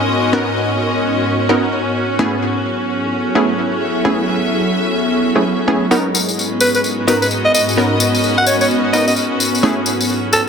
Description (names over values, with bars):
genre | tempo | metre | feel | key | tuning
UK garage, two-step garage | 129 BPM | 4/4 | swing 61% on 16ths | G# minor | A4 = 440 Hz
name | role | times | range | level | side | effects
ethereal airy pad | sustained chords | 0.0-10.5 s | G#2 to C#5 | -19 LUFS | equal | ensemble chorus, built-in reverb
bright symphonic string section | texture | 0.0-10.5 s | G#3 to E5 | -20 LUFS | equal | none
punchy chord stab | stabs | 0.3-9.8 s | A3 to A#4 | -18 LUFS | equal | chorus, vintage 12-bit sampler grit, digital delay
tambourine | percussion | 5.9-10.4 s | none | -20 LUFS | left 4 dB | none
breathy alto saxophone | melody | 6.6-10.4 s | A4 to F#5 | -16 LUFS | equal | digital delay
room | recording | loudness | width
wet digital room reverb, RT60 1.2 s, studio ambience | dense, heavily limited modern master | -13 LUFS | side -6 dB against mid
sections
0.0-10.5 A section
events
filter sweep on ambient pad 0.0-10.5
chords
0.0 G#m11; 2.0 F#m11; 5.9 G#m11; 9.4 F#m11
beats
| 0.33 0.79 1.26 1.72 | 2.19 2.65 3.12 3.58 | 4.05 4.51 4.98 5.45 | 5.91 6.38 6.84 7.31 | 7.77 8.24 8.70 9.17 | 9.63 10.10